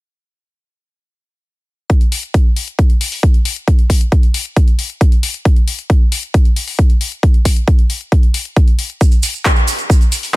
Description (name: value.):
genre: trance.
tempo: 135 BPM.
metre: 4/4.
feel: straight.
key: none.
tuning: none.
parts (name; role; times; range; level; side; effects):
electronic kick drum; drums; 1.9-10.0 s; none; -10 LUFS; equal; none.
punchy analog drum machine; drums; 1.9-10.3 s; handclaps, hi-hat; -20 LUFS; left 3 dB; overdrive.
cabasa; percussion; 9.0-10.3 s; none; -22 LUFS; right 7 dB; none.
room: little or no reverb.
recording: none.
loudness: -11 LUFS.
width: side -20 dB against mid.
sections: 1.9-10.4 A section.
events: none.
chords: none.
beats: | 1.90 2.34 2.79 3.23 | 3.68 4.12 4.57 5.01 | 5.45 5.90 6.34 6.79 | 7.23 7.68 8.12 8.56 | 9.01 9.45 9.90.